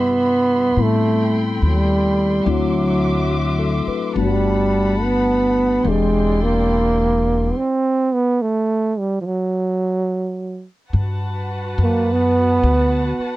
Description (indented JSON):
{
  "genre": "jazz ballad",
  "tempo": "71 BPM",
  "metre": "4/4",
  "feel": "swing 66% on 8ths",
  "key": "G major",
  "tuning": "A4 = 440 Hz",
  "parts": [
    { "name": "mellow trombone", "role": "melody", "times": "0.0-13.4 s", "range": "F3 to C4", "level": "-18 LUFS", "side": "right 2 dB", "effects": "none" },
    { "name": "mellow tine electric piano", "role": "accompaniment", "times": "0.0-7.6 s", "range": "C3 to B4", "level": "-23 LUFS", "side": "left 6 dB", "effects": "auto-pan" },
    { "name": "muted chamber string section", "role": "sustained chords", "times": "0.0-13.4 s", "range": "E4 to D6", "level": "-28 LUFS", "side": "left 1 dB", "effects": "none" },
    { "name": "upright bass", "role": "bass", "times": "0.0-13.2 s", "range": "E1 to A2", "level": "-21 LUFS", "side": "left 1 dB", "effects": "none" }
  ],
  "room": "little or no reverb",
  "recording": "worn, warbling old tape, cassette tape, warbly pitch drift",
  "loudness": "-16 LUFS",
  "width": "side -16 dB against mid",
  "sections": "0.0-10.9 A section; 10.9-13.4 B section",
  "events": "stop 7.5-10.9; trombone solo 10.9-13.4",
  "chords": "0.0 Cmaj7; 0.8 Am9; 2.5 D9; 4.2 Gmaj9; 5.8 E7alt; 7.5 N.C.; 10.9 Gmaj9",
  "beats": "| 0.78 1.62 2.47 3.31 | 4.16 5.00 5.85 6.69 | 7.54 8.39 9.23 10.09 | 10.94 11.78 12.63"
}